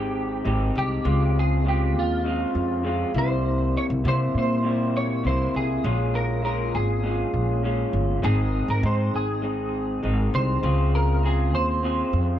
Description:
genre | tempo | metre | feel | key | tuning
indie pop, bedroom pop | 100 BPM | 4/4 | straight | Ab major | A4 = 440 Hz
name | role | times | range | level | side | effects
clean electric guitar | melody | 0.0-12.4 s | F4 to Db5 | -29 LUFS | right 2 dB | ensemble chorus, analog delay
electric guitar through a small old amp | accompaniment | 0.0-12.4 s | Bb2 to Ab4 | -26 LUFS | left 2 dB | wide subtle chorus, warbly pitch drift
upright bass | bass | 0.0-12.4 s | G1 to C3 | -24 LUFS | equal | none
room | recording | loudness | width
light reverb | cassette tape | -21 LUFS | side -11 dB against mid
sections
0.0-12.4 A section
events
none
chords
0.0 Abmaj7; 1.1 Dbmaj7; 3.1 C7; 5.8 Bbm7; 8.2 Ab; 10.6 Dbmaj7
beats
0.45 | 1.05 1.65 2.25 2.85 | 3.45 4.05 4.65 5.25 | 5.84 6.44 7.04 7.64 | 8.24 8.84 9.44 10.04 | 10.64 11.23 11.83

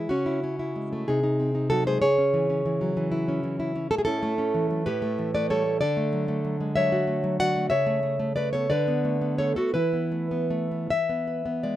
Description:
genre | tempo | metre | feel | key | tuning
romantic piece for solo classical guitar | 50-64 BPM (dotted quarters) | 6/8 | rubato | A major from 3.9 s | A4 = 440 Hz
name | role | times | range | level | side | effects
nylon-string guitar | solo | 0.0-11.8 s | A2 to F#5 | -23 LUFS | equal | none
room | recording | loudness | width
light reverb | minimal, uncompressed stereo recording | -23 LUFS | side -13 dB against mid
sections
0.0-11.8 A section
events
none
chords
0.1 C#m; 1.1 G#7/B#; 2.0 C#m; 3.9 A; 4.9 A5; 5.8 D; 7.7 A/C#; 8.7 Bm7/D; 9.8 Esus4; 10.9 E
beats
| 0.10 1.08 | 2.04 2.98 | 3.92 4.87 | 5.83 6.78 | 7.73 8.72 | 9.76 10.91

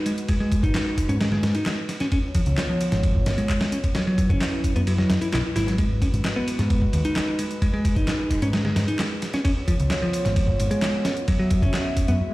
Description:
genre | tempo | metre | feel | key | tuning
breakbeat, breaks | 131 BPM | 4/4 | straight | G# minor | A4 = 439 Hz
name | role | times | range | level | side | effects
dark analog pad | sustained chords | 0.0-12.3 s | F#3 to E5 | -31 LUFS | equal | chorus, sidechain pumping
modern bright picked electric bass | riff | 0.0-12.1 s | E#3 to E4 | -25 LUFS | equal | vintage 12-bit sampler grit, dub echo
dusty soul sampler-style drum kit | drums | 0.1-12.1 s | kick drum, ride cymbal, snare drum | -25 LUFS | equal | small room ambience
house drum kit | drums | 0.1-12.2 s | handclaps, hi-hat | -35 LUFS | left 1 dB | small room ambience
hollow-body short-scale picked electric bass | bass | 0.6-12.2 s | F#1 to G#2 | -23 LUFS | equal | tube saturation
swell | sound effects | 12.3 s | none | -31 LUFS | left 3 dB | none
room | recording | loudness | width
light reverb, digital ambience | played on a big sound system in a bare room, stone room reverb, vinyl crackle | -20 LUFS | side -18 dB against mid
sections
0.0-12.3 A section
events
none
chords
0.0 G#m7; 2.1 C#7; 4.0 F#7sus4; 5.8 G#m7; 9.5 C#7; 11.3 F#7sus4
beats
| 0.29 0.75 1.21 1.67 | 2.12 2.58 3.04 3.50 | 3.96 4.42 4.87 5.33 | 5.79 6.25 6.71 7.16 | 7.62 8.08 8.54 8.99 | 9.45 9.91 10.37 10.83 | 11.29 11.74 12.20

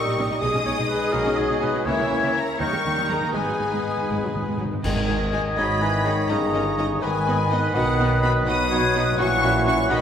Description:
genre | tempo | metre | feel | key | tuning
classical, dramatic, fast romantic movement for symphony orchestra | 83 BPM (dotted quarters) | 6/8 | straight | G# minor | A4 = 439 Hz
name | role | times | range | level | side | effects
rich symphonic violin section | melody | 0.0-10.0 s | D#5 to D#6 | -29 LUFS | left 3 dB | none
large flute ensemble | second line | 0.0-10.0 s | D#6 to G#6 | -29 LUFS | left 2 dB | none
rich symphonic violin section | second line | 0.0-10.0 s | F#4 to E5 | -33 LUFS | left 2 dB | none
warm oboe | second line | 0.0-10.0 s | G#4 to F#5 | -29 LUFS | right 1 dB | none
mellow bassoon | accompaniment | 0.0-10.0 s | C#3 to G#3 | -29 LUFS | right 1 dB | none
rich studio viola section | accompaniment | 0.0-10.0 s | F#3 to G#4 | -30 LUFS | right 1 dB | none
mellow French horn section | sustained chords | 0.0-10.0 s | D#3 to E4 | -29 LUFS | left 4 dB | none
rich symphonic cello section | bass | 0.1-10.0 s | G2 to D#3 | -29 LUFS | right 1 dB | none
warm studio double bass section | bass | 0.2-10.0 s | G1 to D#2 | -30 LUFS | right 2 dB | none
timpani | percussion | 3.3-5.5 s | G#2 | -31 LUFS | left 1 dB | none
clear trumpet | stabs | 4.8-10.0 s | B4 to D#5 | -28 LUFS | equal | none
clash cymbals and concert bass drum | percussion | 4.8-5.8 s | none | -30 LUFS | equal | none
room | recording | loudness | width
wet scoring stage reverb, RT60 1.6 s | recorded in a church or concert hall | -20 LUFS | side -8 dB against mid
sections
0.0-4.8 A section; 4.8-10.0 A section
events
timpani fill 3.3-4.8; band accent 4.8-5.3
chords
0.4 G#m/B; 1.9 A#dim/C#; 2.6 D#7; 3.3 G#m; 6.3 D#7/G; 7.0 G#m; 7.8 B; 9.2 F#7/A#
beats
| 0.42 1.14 | 1.86 2.60 | 3.34 4.09 | 4.84 5.57 | 6.30 7.03 | 7.75 8.47 | 9.19 9.91

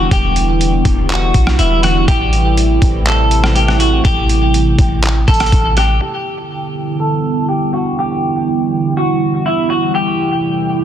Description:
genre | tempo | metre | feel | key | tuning
hip hop, atmospheric cloud-rap | 122 BPM | 4/4 | half-time | E minor | A4 = 440 Hz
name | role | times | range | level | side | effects
clean electric guitar | melody | 0.0-10.8 s | E4 to A4 | -18 LUFS | left 1 dB | analog chorus, low-pass filter, digital delay
dark analog pad | sustained chords | 0.0-10.8 s | C3 to E4 | -17 LUFS | right 2 dB | chorus, phaser, sidechain pumping, low-pass filter
warm 808-style bass | bass | 0.0-6.0 s | E1 to B1 | -14 LUFS | equal | none
trip hop sampler-style drum kit | drums | 0.1-5.9 s | handclaps, hi-hat, kick drum, rim click | -16 LUFS | equal | soft clipping on snare
room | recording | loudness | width
little or no reverb | dense, heavily limited modern master | -11 LUFS | side -10 dB against mid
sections
0.0-6.0 A section; 6.0-10.8 B section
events
none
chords
0.0 Em7; 2.1 Am7; 6.0 Em7; 9.9 Am7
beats
| 0.11 0.60 1.10 1.59 | 2.08 2.57 3.06 3.56 | 4.05 4.54 5.03 5.52 | 6.01 6.51 7.00 7.49 | 7.98 8.47 8.97 9.46 | 9.95 10.44

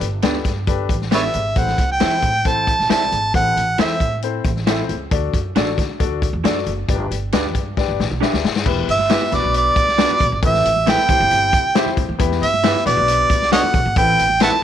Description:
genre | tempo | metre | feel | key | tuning
uptempo 1960s-style soul | 136 BPM | 4/4 | straight | A dorian | A4 = 440 Hz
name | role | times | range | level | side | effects
warm grand piano | accompaniment | 0.0-14.6 s | B3 to E5 | -25 LUFS | left 11 dB | none
upright bass | bass | 0.0-14.5 s | E1 to D3 | -24 LUFS | right 1 dB | none
vintage drum kit | drums | 0.0-14.5 s | crash cymbal, hi-hat, kick drum, snare drum | -21 LUFS | left 2 dB | none
electric guitar through a small old amp | stabs | 0.2-14.5 s | B3 to E5 | -25 LUFS | right 13 dB | none
warm harmonica | melody | 1.1-4.2, 8.9-14.6 s | B4 to A5 | -17 LUFS | right 2 dB | none
congas | percussion | 8.7-14.6 s | none | -33 LUFS | right 11 dB | none
room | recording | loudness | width
light reverb, small room ambience | 1960s-style stereo with parts hard left and right | -15 LUFS | side -10 dB against mid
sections
0.0-8.7 A section; 8.7-14.6 B section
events
drum fill 7.8-8.7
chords
0.0 Gadd9; 1.6 Am; 5.1 D; 6.9 G; 8.7 Em; 9.3 Bm; 10.4 Amadd9; 11.1 C; 12.2 Em; 12.9 Bm; 14.0 Amadd9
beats
0.23 0.68 1.12 | 1.57 2.01 2.45 2.90 | 3.34 3.78 4.23 4.67 | 5.11 5.56 6.00 6.44 | 6.89 7.33 7.77 8.21 | 8.66 9.10 9.54 9.98 | 10.43 10.87 11.31 11.75 | 12.20 12.64 13.08 13.52 | 13.96 14.41

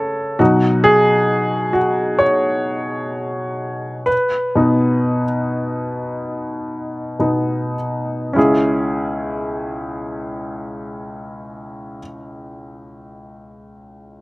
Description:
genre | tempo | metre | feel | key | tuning
pop | 50-68 BPM | 4/4 | straight | C# minor | A4 = 441 Hz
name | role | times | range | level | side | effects
clear upright piano | accompaniment | 0.0-14.2 s | C#2 to C#5 | -17 LUFS | equal | none
room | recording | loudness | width
light reverb | recorded outdoors, with no room sound | -16 LUFS | side -22 dB against mid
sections
0.0-8.4 A section; 8.4-13.1 B section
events
upright piano solo 0.0-8.4; slowing down 0.4-8.4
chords
0.4 B; 8.4 C#m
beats
| 0.40 1.29 2.19 3.12 | 4.07 5.06 6.10 7.20 | 8.36 9.55 10.72 11.88

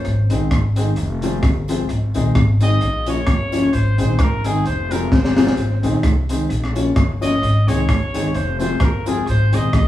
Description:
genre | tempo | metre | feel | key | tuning
ska | 130 BPM | 4/4 | swing 55% on 8ths | Ab major | A4 = 440 Hz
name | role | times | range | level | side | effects
clear trumpet | melody | 0.0-9.9 s | Ab4 to Eb5 | -24 LUFS | equal | none
crunchy breakbeat drum kit | drums | 0.0-9.9 s | hi-hat, kick drum, rim click, snare drum | -20 LUFS | equal | analog delay
upright bass | bass | 0.1-9.9 s | F1 to C2 | -19 LUFS | equal | none
mellow electric guitar | accompaniment | 0.3-9.7 s | Eb3 to Db4 | -25 LUFS | right 1 dB | none
dark upright piano | stabs | 0.3-9.7 s | C4 to Db5 | -25 LUFS | left 4 dB | none
tambourine | percussion | 0.3-9.6 s | none | -44 LUFS | right 3 dB | none
room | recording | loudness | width
moderate large studio reverb, RT60 1.1 s | band playing live in one room | -15 LUFS | side -13 dB against mid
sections
0.0-9.9 A section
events
trumpet solo 0.0-9.9; drum fill 5.1-5.6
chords
0.1 Ab; 1.0 Fm; 1.9 Ab; 2.8 Bbm; 3.7 Ab; 4.7 Fm; 5.6 Ab; 6.5 Bbm; 7.4 Ab; 8.3 Fm; 9.3 Ab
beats
| 0.05 0.51 0.97 1.43 | 1.89 2.35 2.82 3.28 | 3.74 4.20 4.66 5.12 | 5.58 6.04 6.50 6.96 | 7.43 7.89 8.35 8.81 | 9.27 9.73

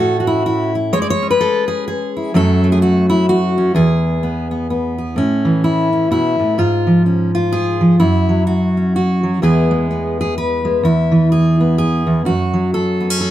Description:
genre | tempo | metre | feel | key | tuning
folk, solo fingerstyle acoustic guitar | 127 BPM | 3/4 | swing 61% on 8ths | A major | A4 = 436 Hz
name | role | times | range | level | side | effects
fingerpicked steel-string acoustic guitar | solo | 0.0-13.3 s | E2 to D5 | -13 LUFS | equal | none
room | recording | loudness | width
moderate studio reverb, RT60 0.7 s | none | -13 LUFS | side -13 dB against mid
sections
0.0-5.2 A section; 5.2-13.3 B section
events
none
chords
0.0 A; 0.9 C#m/G#; 2.3 F#m; 3.8 E; 5.2 Aadd9; 6.6 C#/G#; 8.0 F#5; 9.4 E; 12.3 F#m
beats
0.00 0.47 | 0.94 1.41 1.87 | 2.34 2.81 3.28 | 3.75 4.22 4.69 | 5.17 5.64 6.11 | 6.58 7.05 7.53 | 8.00 8.47 8.95 | 9.42 9.89 10.36 | 10.84 11.31 11.78 | 12.26 12.73 13.20

